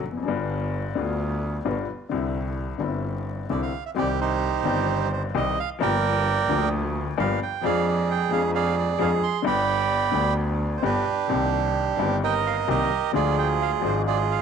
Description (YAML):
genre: tango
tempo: 131 BPM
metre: 4/4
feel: rubato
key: C major, C minor from 4.0 s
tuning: A4 = 440 Hz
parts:
  - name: warm upright piano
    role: accompaniment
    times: 0.0-14.4 s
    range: G1 to Ab4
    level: -27 LUFS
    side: left 8 dB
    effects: none
  - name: clear double bass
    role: bass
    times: 0.0-14.4 s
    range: F1 to F2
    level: -28 LUFS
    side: right 1 dB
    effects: none
  - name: bandoneon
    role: melody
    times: 3.5-14.4 s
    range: D4 to C6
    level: -24 LUFS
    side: right 8 dB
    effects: none
room: wet spring reverb, RT60 1.2 s, small room ambience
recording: 1960s-style stereo with parts hard left and right, vinyl crackle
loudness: -22 LUFS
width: side -7 dB against mid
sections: 0.0-4.0 A section; 4.0-14.4 B section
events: none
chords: 0.3 G7; 2.1 Cadd9; 4.0 Cm; 5.8 Gm7; 7.6 Ddim/F; 9.5 G; 11.3 Cm7; 13.1 Ddim